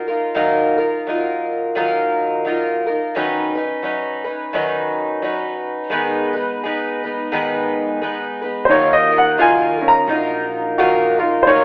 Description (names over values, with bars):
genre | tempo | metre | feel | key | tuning
acoustic folk duo or small band | 86 BPM | 4/4 | swing 60% on 8ths | Eb minor | A4 = 437 Hz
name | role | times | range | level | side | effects
picked twelve-string acoustic guitar | accompaniment | 0.0-11.6 s | Ab2 to B4 | -18 LUFS | equal | none
clear upright piano | melody | 8.7-11.6 s | C5 to Bb5 | -13 LUFS | equal | none
felt-muted upright piano | arpeggios | 8.7-11.6 s | Db4 to Gb4 | -20 LUFS | equal | none
mellow fretless electric bass | bass | 8.7-11.6 s | Bb1 to Eb2 | -31 LUFS | equal | none
room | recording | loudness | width
moderate large studio reverb, RT60 1.3 s | telephone sound | -16 LUFS | side -30 dB against mid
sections
0.0-8.7 A section; 8.7-11.6 B section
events
upright piano solo 8.7-11.6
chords
0.0 Ebmadd9; 3.1 Badd9/D#; 5.9 Abm; 8.7 Ebmadd9